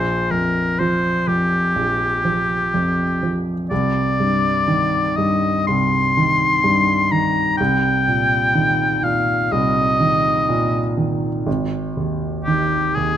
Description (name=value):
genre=classical, impressionist duo for oboe and grand piano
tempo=62 BPM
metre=4/4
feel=rubato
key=unclear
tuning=A4 = 442 Hz
part: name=clear oboe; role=melody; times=0.0-13.2 s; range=G4 to C6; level=-18 LUFS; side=left 2 dB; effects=none
part: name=warm grand piano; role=accompaniment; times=0.0-13.2 s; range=Ab1 to F3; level=-19 LUFS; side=right 1 dB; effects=none
room=moderate recital hall reverb, RT60 1.4 s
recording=close, detailed microphones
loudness=-16 LUFS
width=side -10 dB against mid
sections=0.0-13.2 A section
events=none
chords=0.0 Bb5; 3.7 Cmadd9; 7.6 Cm7; 11.5 Ab5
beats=0.79 1.76 2.74 | 3.71 4.67 5.69 6.65 | 7.59 8.55 9.53 10.50 | 11.47 12.47